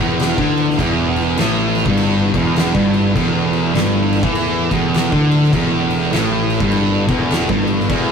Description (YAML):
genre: stoner and doom metal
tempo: 101 BPM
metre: 4/4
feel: swing 62% on 8ths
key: E minor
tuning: A4 = 445 Hz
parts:
  - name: percussive tonewheel organ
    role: sustained chords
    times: 0.0-8.1 s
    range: E3 to E4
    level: -28 LUFS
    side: left 2 dB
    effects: slow rotary speaker, overdrive, chorus vibrato
  - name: high-gain distorted guitar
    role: riff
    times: 0.0-8.1 s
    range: E2 to E3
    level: -22 LUFS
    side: left 1 dB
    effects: distortion
  - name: thick fuzz guitar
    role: riff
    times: 0.0-8.1 s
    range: E2 to E3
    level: -20 LUFS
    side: left 4 dB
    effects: distortion
  - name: thick fuzz guitar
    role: riff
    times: 0.0-8.1 s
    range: E2 to E3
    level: -19 LUFS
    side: right 6 dB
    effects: distortion
  - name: fuzz picked electric bass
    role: bass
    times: 0.0-8.1 s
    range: E1 to E2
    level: -23 LUFS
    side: left 1 dB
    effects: overdrive, tube saturation
  - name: oversized low-tuned drum kit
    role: drums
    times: 0.2-8.1 s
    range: crash cymbal, kick drum, snare drum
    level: -21 LUFS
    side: left 1 dB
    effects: none
room: moderate booth ambience, RT60 0.2 s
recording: rough rehearsal-room recording, warm saturation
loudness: -14 LUFS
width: side -6 dB against mid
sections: 0.0-8.1 A section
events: none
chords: 0.0 Em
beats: 0.20 | 0.79 1.38 1.98 2.57 | 3.16 3.75 4.34 4.94 | 5.53 6.12 6.72 7.31 | 7.90